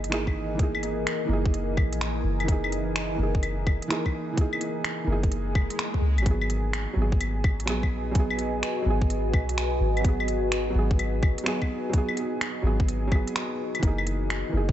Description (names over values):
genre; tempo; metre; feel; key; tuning
future garage; 127 BPM; 4/4; swing 65% on 16ths; G# minor; A4 = 440 Hz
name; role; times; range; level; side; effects
felt-muted upright piano; accompaniment; 0.0-14.7 s; E3 to G#4; -31 LUFS; right 2 dB; sidechain pumping, tape echo
deep dark ambient pad; sustained chords; 0.0-14.7 s; E3 to G#5; -32 LUFS; left 1 dB; chorus, built-in reverb, vintage 12-bit sampler grit, sidechain pumping
soft 808-style bass; bass; 0.0-14.7 s; F#1 to C#2; -28 LUFS; equal; sidechain pumping
organic electronic drum kit; drums; 0.0-14.4 s; claves, finger snaps, hi-hat; -32 LUFS; left 1 dB; none
electronic kick drum; drums; 0.3-14.7 s; none; -24 LUFS; equal; none
swell; sound effects; 5.5-6.3 s; none; -37 LUFS; left 2 dB; none
room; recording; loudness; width
light reverb; nothing above 8.0 kHz; -24 LUFS; side -12 dB against mid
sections
0.0-14.7 A section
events
swell 5.5-6.3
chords
0.0 F#13; 6.3 G#m7; 13.8 F#13